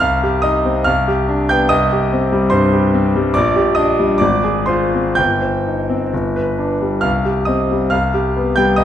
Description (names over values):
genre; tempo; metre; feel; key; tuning
classical, romantic character piece for solo piano; 60-74 BPM; 2/4; rubato; C minor; A4 = 440 Hz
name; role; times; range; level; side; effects
bright concert grand piano; solo; 0.0-8.8 s; G1 to G6; -13 LUFS; equal; none
room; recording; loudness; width
wet recital hall reverb, RT60 1.5 s; dark, warm production; -14 LUFS; side -10 dB against mid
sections
0.0-8.8 A section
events
none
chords
0.0 Cm; 0.9 G7/C; 1.7 Cm; 3.3 Gm/Bb; 4.2 Fm/Ab; 5.2 Cm/G; 6.1 G; 7.0 Cm; 7.9 G7/C